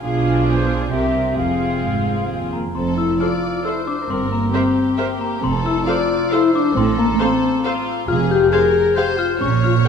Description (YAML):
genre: cinematic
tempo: 135 BPM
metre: 3/4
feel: straight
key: F major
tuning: A4 = 438 Hz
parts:
  - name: warm studio violin section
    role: melody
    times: 0.0-9.9 s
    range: G#4 to G5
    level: -32 LUFS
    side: left 4 dB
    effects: none
  - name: clear studio violin section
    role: second line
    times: 0.0-9.9 s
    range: F4 to D5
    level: -27 LUFS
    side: left 2 dB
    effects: none
  - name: silver concert flute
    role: second line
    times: 0.0-2.3 s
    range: C5 to F5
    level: -25 LUFS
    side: equal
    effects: none
  - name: warm studio viola section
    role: accompaniment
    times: 0.0-9.9 s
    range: C4 to C5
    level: -25 LUFS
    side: equal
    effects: none
  - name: rich studio double bass section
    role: bass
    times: 0.0-9.8 s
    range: F1 to C2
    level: -24 LUFS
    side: right 5 dB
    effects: none
  - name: warm studio cello section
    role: bass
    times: 0.0-9.8 s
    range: Eb2 to C3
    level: -24 LUFS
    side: right 5 dB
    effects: none
  - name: glockenspiel with soft plastic mallets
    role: melody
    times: 2.5-9.9 s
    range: Bb5 to Ab6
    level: -25 LUFS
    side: left 4 dB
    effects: none
  - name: dark French horn section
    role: sustained chords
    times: 2.5-9.7 s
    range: Bb3 to Ab4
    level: -18 LUFS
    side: left 4 dB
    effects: none
room: wet concert hall reverb, RT60 1.8 s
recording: dark, warm production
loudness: -16 LUFS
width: side -6 dB against mid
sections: 0.0-2.8 A section; 2.8-9.9 B section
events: none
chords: 0.0 Bdim7; 0.9 C7; 1.4 Fm; 2.8 F; 4.1 C7(no3)/G; 5.4 F; 6.8 F/A; 8.1 Fm